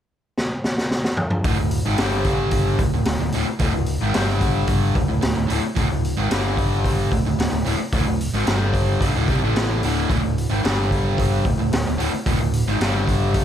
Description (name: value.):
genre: classic rock.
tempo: 111 BPM.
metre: 4/4.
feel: straight.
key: unclear.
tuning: A4 = 440 Hz.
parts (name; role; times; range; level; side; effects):
raw garage drum kit; drums; 0.4-13.4 s; hi-hat, kick drum, snare drum, toms; -22 LUFS; equal; none.
distorted electric guitar; riff; 1.4-13.4 s; D2 to A3; -25 LUFS; right 9 dB; distortion.
raw garage guitar; riff; 1.4-13.4 s; D2 to A3; -25 LUFS; left 6 dB; overdrive.
fingered electric bass; bass; 1.4-13.4 s; D1 to C2; -24 LUFS; equal; none.
room: light reverb.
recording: none.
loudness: -18 LUFS.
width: side -10 dB against mid.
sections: 0.0-1.4 A section; 1.4-13.4 B section.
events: drum fill 0.4-1.4.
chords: 0.0 N.C.; 1.4 D5; 2.0 G5; 2.8 D5; 4.1 G5; 5.0 D5; 6.3 G5; 7.1 D5; 8.5 G5; 9.0 D5; 10.6 G5; 11.5 D5; 12.8 G5.